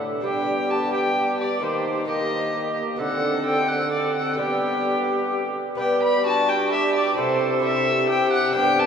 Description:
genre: classical, renaissance-style consort dance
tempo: 130 BPM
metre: 3/4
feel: straight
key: G major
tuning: A4 = 440 Hz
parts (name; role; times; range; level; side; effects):
- lute; accompaniment; 0.0-8.9 s; G2 to D5; -27 LUFS; left 1 dB; none
- mellow bassoon; bass; 0.0-8.9 s; G2 to G3; -28 LUFS; right 1 dB; none
- dark violin; melody; 0.2-8.9 s; C5 to B5; -24 LUFS; left 2 dB; none
- tenor recorder; second line; 0.2-8.9 s; F#4 to A4; -27 LUFS; right 3 dB; none
- warm trombone; accompaniment; 0.2-8.9 s; Bb3 to D4; -30 LUFS; equal; none
room: wet cathedral reverb, RT60 5.8 s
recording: recorded in a church or concert hall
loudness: -20 LUFS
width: side -7 dB against mid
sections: 0.0-5.8 A section; 5.8-8.9 A section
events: none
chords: 0.2 G; 1.6 Eb; 3.0 D7; 4.4 G; 7.2 C

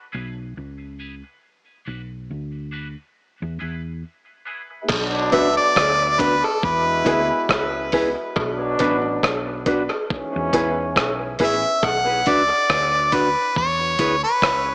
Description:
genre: dub reggae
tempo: 69 BPM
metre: 4/4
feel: swing 55% on 16ths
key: B dorian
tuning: A4 = 439 Hz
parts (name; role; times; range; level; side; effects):
- mellow electric guitar; accompaniment; 0.1-14.2 s; B3 to B4; -26 LUFS; equal; high-pass filter, tape echo
- warm upright piano; stabs; 0.1-11.6 s; B3 to B4; -26 LUFS; equal; high-pass filter, tape echo
- hollow-body short-scale fingered electric bass; bass; 0.1-14.7 s; A1 to E2; -31 LUFS; equal; none
- clear trombone section; second line; 4.9-11.4 s; G#2 to E4; -25 LUFS; equal; tape echo
- dusty soul sampler-style drum kit; drums; 4.9-14.7 s; crash cymbal, hi-hat, kick drum, rim click; -23 LUFS; equal; none
- cowbell and jawbone-type rattle; percussion; 4.9-12.1 s; none; -28 LUFS; equal; tape echo
- bright harmonica; melody; 5.3-14.7 s; A4 to F#5; -19 LUFS; equal; tape echo
room: moderate spring reverb, RT60 2.9 s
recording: small speaker sound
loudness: -17 LUFS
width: side -40 dB against mid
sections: 0.0-4.9 A section; 4.9-14.7 B section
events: break 0.0-4.9; filter sweep 0.0-4.9; part muted 11.8-14.7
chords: 0.0 E; 1.4 Bm; 3.2 E; 4.9 Bm; 6.6 E; 8.4 Bm; 10.1 E; 11.8 Bm; 13.6 E

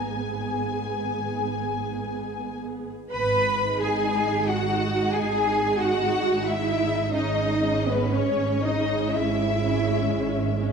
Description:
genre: classical, slow romantic movement for string orchestra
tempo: 53-63 BPM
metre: 4/4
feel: rubato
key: G# minor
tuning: A4 = 441 Hz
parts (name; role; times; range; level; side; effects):
- warm symphonic violin section; melody; 0.0-10.6 s; B4 to B5; -30 LUFS; left 7 dB; none
- warm symphonic violin section; second line; 0.0-10.6 s; B4 to B5; -31 LUFS; left 2 dB; none
- warm symphonic viola section; accompaniment; 0.0-10.7 s; G#3 to G#4; -29 LUFS; right 1 dB; none
- warm symphonic cello section; bass; 0.0-10.6 s; G#2 to B4; -27 LUFS; right 3 dB; none
- warm symphonic double bass section; bass; 0.0-10.7 s; G#1; -30 LUFS; right 4 dB; none
room: wet concert hall reverb, RT60 2.0 s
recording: none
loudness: -22 LUFS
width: side -6 dB against mid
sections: 0.0-3.1 A section; 3.1-10.7 A section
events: none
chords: 0.0 G#m; 7.1 C#m/G#

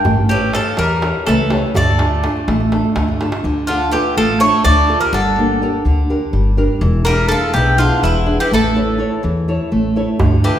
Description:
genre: greek folk, Greek bouzouki band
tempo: 248 BPM (eighths)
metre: 7/8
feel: straight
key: D harmonic minor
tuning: A4 = 440 Hz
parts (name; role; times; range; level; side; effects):
- nylon-string guitar; accompaniment; 0.0-10.6 s; B2 to C#5; -18 LUFS; equal; none
- darbuka; percussion; 0.0-3.4, 10.2-10.3 s; none; -20 LUFS; right 2 dB; none
- upright bass; bass; 0.1-10.6 s; E1 to E2; -18 LUFS; equal; none
- Greek bouzouki; melody; 0.3-10.6 s; E4 to D5; -18 LUFS; equal; none
- Greek bouzouki; second line; 0.3-10.6 s; D3 to B3; -22 LUFS; right 1 dB; none
room: wet recital hall reverb, RT60 1.6 s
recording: recorded in a church or concert hall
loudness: -13 LUFS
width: side -10 dB against mid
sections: 0.0-3.4 A section; 3.4-10.6 A section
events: drum fill 3.1-3.4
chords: 0.0 A7; 1.7 Dm; 5.1 Gm; 6.8 E7; 8.5 A

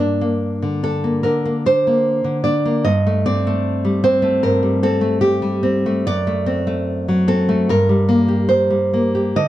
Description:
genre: romantic piece for solo classical guitar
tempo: 68-78 BPM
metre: 4/4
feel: rubato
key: G minor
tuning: A4 = 440 Hz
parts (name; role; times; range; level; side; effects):
- nylon-string guitar; solo; 0.0-9.5 s; F#2 to Eb5; -15 LUFS; equal; none
room: light reverb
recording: dark, warm production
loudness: -15 LUFS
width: side -14 dB against mid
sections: 0.0-9.5 A section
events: none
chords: 0.0 Gm; 2.9 Csus2/G; 6.1 D7/F#; 7.7 Gm

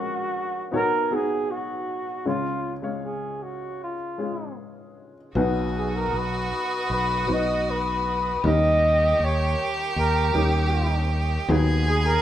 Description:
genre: acoustic folk-pop ballad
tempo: 78 BPM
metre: 4/4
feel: straight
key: unclear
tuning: A4 = 440 Hz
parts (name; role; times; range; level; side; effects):
- mellow flugelhorn; melody; 0.0-12.2 s; E#4 to D#5; -25 LUFS; right 1 dB; none
- warm upright piano; accompaniment; 0.0-12.2 s; A#1 to E#5; -29 LUFS; left 2 dB; none
- dark studio string section; sustained chords; 5.3-12.2 s; G#4 to D#6; -36 LUFS; left 2 dB; none
- clear violin; second line; 5.4-12.2 s; F#4 to G#4; -29 LUFS; right 2 dB; none
- fingered electric bass; bass; 5.4-12.2 s; B1 to D#2; -24 LUFS; equal; none
room: light reverb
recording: band playing live in one room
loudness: -22 LUFS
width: side -11 dB against mid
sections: 0.0-5.4 A section; 5.4-12.2 B section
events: none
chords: 0.0 F#add9/A#; 0.7 Badd9; 2.3 C#; 5.4 B; 8.4 D#7; 11.5 G#m7/D#

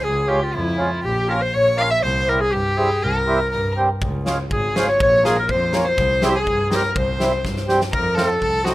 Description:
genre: klezmer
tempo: 122 BPM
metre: 2/4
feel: straight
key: C phrygian dominant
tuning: A4 = 440 Hz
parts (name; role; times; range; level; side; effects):
- clear clarinet; melody; 0.0-8.7 s; E4 to F5; -21 LUFS; equal; none
- rich violin; second line; 0.0-8.7 s; E4 to F5; -23 LUFS; left 2 dB; none
- rich double bass; bass; 0.0-8.7 s; Ab1 to G2; -24 LUFS; equal; none
- mellow accordion; accompaniment; 0.3-8.7 s; G3 to G4; -22 LUFS; right 2 dB; none
- big rock drum kit; drums; 4.0-8.7 s; kick drum, snare drum; -26 LUFS; equal; none
room: small room ambience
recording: rough home demo mix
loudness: -17 LUFS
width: side -16 dB against mid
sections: 0.0-7.9 A section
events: speeding up 0.0-8.7; drum fill 7.4-7.9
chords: 0.0 Db; 1.0 Bbm; 2.0 C; 4.0 Db; 5.0 Bbm; 6.0 C; 7.9 F

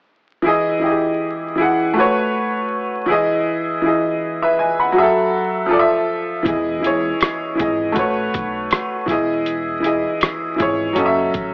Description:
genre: lo-fi hip hop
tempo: 80 BPM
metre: 4/4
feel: swing 58% on 16ths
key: E major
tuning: A4 = 441 Hz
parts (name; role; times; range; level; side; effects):
- bright upright piano; accompaniment; 0.4-11.5 s; E3 to B5; -16 LUFS; equal; low-pass filter
- upright bass; bass; 6.5-11.5 s; E1 to B1; -33 LUFS; equal; none
- lo-fi sampler-style drum kit; drums; 6.5-11.5 s; hi-hat, kick drum, rim click; -21 LUFS; equal; none
room: moderate plate reverb, RT60 1.9 s, small room ambience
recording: vinyl crackle, AM radio sound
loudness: -16 LUFS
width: side -36 dB against mid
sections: 0.5-11.5 A section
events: none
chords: 0.5 Emaj7; 2.0 A69; 3.1 Emaj7; 5.0 F#m7; 5.7 Fmaj7; 6.5 Emaj7; 8.0 A69; 9.1 Emaj7; 11.0 F#m7

